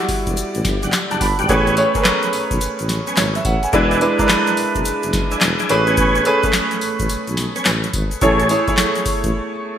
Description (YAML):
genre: R&B, new jack swing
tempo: 107 BPM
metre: 4/4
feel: swing 64% on 16ths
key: A major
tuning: A4 = 442 Hz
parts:
  - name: warm concert grand piano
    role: accompaniment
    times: 0.0-9.8 s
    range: G3 to B5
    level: -18 LUFS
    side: right 1 dB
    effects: analog chorus, shimmer reverb
  - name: breathy tuba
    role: bass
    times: 0.1-9.3 s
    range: E1 to B1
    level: -23 LUFS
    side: equal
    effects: none
  - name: booming analog drum machine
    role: drums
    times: 0.1-9.4 s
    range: handclaps, hi-hat, kick drum, snare drum, tambourine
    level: -20 LUFS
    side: equal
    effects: gated reverb
  - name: egg shaker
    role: percussion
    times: 0.3-9.3 s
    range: none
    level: -33 LUFS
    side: left 6 dB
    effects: none
  - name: tonewheel organ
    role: stabs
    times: 0.8-8.5 s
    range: G3 to G#4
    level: -25 LUFS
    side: left 1 dB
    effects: chorus vibrato, slow rotary speaker, digital delay, shimmer reverb
room: moderate plate reverb, RT60 1.6 s, studio ambience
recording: bright 1980s-style digital production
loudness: -15 LUFS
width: side -9 dB against mid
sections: 0.0-9.8 A section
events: break 9.3-9.8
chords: 0.0 Em9; 1.5 Amaj9; 3.7 E7; 5.7 Amaj9; 8.2 Amaj7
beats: 0.37 0.93 | 1.49 2.05 2.61 3.17 | 3.73 4.29 4.85 5.42 | 5.97 6.54 7.10 7.66 | 8.22 8.78 9.34